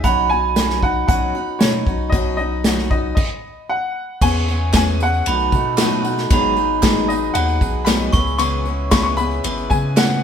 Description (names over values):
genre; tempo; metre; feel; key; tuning
indie folk with a building arrangement; 115 BPM; 4/4; straight; unclear; A4 = 440 Hz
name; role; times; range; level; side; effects
warm upright piano; melody; 0.0-10.2 s; C#5 to C#6; -23 LUFS; left 3 dB; none
glockenspiel with brass mallets; second line; 0.0-10.2 s; B5 to C#6; -23 LUFS; right 12 dB; none
picked acoustic archtop guitar; accompaniment; 0.0-10.2 s; G#2 to G#4; -23 LUFS; left 5 dB; none
punchy sub bass; bass; 0.0-10.2 s; G#1 to C#3; -23 LUFS; equal; none
unplugged drum kit; drums; 0.0-10.1 s; crash cymbal, hi-hat, kick drum, ride cymbal, snare drum; -19 LUFS; equal; none
tambourine; percussion; 0.6-10.2 s; none; -37 LUFS; right 6 dB; none
pedal harmonium; sustained chords; 4.2-10.2 s; C#3 to F#4; -32 LUFS; equal; none
group handclap; percussion; 4.7-10.1 s; none; -31 LUFS; right 3 dB; none
room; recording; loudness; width
moderate stone room reverb, RT60 1.1 s; band playing live in one room; -16 LUFS; side -8 dB against mid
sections
0.0-4.2 A section; 4.2-10.2 B section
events
stop 3.2-4.2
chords
0.0 Badd9; 4.2 E6; 5.3 B7; 6.3 G#m7; 8.1 C#m7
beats
| 0.04 0.56 1.08 1.61 | 2.13 2.65 3.17 3.69 | 4.22 4.74 5.26 5.78 | 6.31 6.83 7.35 7.87 | 8.40 8.92 9.44 9.97